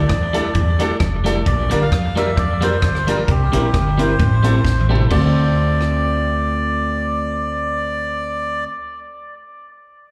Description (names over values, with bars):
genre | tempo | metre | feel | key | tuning
ska | 132 BPM | 4/4 | swing 54% on 8ths | D minor | A4 = 444 Hz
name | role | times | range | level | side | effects
melodica | melody | 0.0-8.6 s | G4 to F5 | -25 LUFS | equal | dub echo, slapback echo
clean electric guitar | accompaniment | 0.0-8.7 s | G3 to F4 | -27 LUFS | equal | dub echo, slapback echo
upright bass | bass | 0.0-8.6 s | F1 to F2 | -22 LUFS | equal | none
clean electric guitar | riff | 0.1-4.8 s | F2 to F3 | -30 LUFS | equal | none
compact cocktail drum kit | drums | 0.1-5.9 s | crash cymbal, hi-hat, kick drum, rim click, snare drum, toms | -24 LUFS | equal | none
warm upright piano | stabs | 0.3-8.6 s | C4 to Bb4 | -26 LUFS | equal | slapback echo
room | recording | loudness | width
light reverb, small room ambience | live gig heard through the venue's PA, club reverb | -18 LUFS | mono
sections
0.0-5.1 A section; 5.1-8.7 B section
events
drum fill 4.7-5.1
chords
0.0 A7sus4; 1.5 Bb6; 3.3 C7; 4.2 Am7; 5.1 Dm7